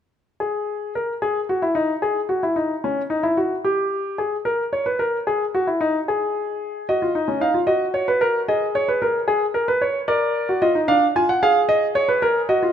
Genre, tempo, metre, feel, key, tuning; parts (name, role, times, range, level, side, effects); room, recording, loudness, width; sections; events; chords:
classical, baroque-style 4-part fugue for grand piano; 74 BPM (dotted quarters); 12/8; straight; G# minor; A4 = 442 Hz
warm grand piano; solo; 0.4-12.7 s; C#4 to G#5; -18 LUFS; equal
moderate recital hall reverb, RT60 1.6 s; close, detailed microphones; -19 LUFS; side -9 dB against mid
0.4-12.7 A section
0.4 N.C.; 6.9 D#m; 8.5 G#m; 10.1 A#7; 11.7 D#m